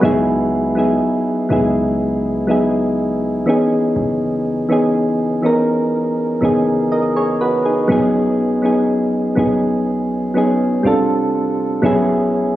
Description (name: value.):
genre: R&B.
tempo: 61 BPM.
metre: 4/4.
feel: straight.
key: unclear.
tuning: A4 = 439 Hz.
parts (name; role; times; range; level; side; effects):
soft electric-piano-like synth keys; accompaniment; 0.0-12.6 s; E3 to D#5; -14 LUFS; equal; chorus.
clean 808-style bass; bass; 0.0-12.6 s; F1 to C#2; -27 LUFS; equal; none.
room: light reverb.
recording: recorded on a phone in the room, studio reverb.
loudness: -14 LUFS.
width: side -14 dB against mid.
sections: 0.0-12.6 A section.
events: none.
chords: 0.0 C#m11; 3.5 F#13sus4; 7.9 B6; 10.8 F69; 11.8 E69/B.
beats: | 0.03 1.01 1.99 2.98 | 3.96 4.94 5.93 6.91 | 7.89 8.88 9.86 10.85 | 11.83.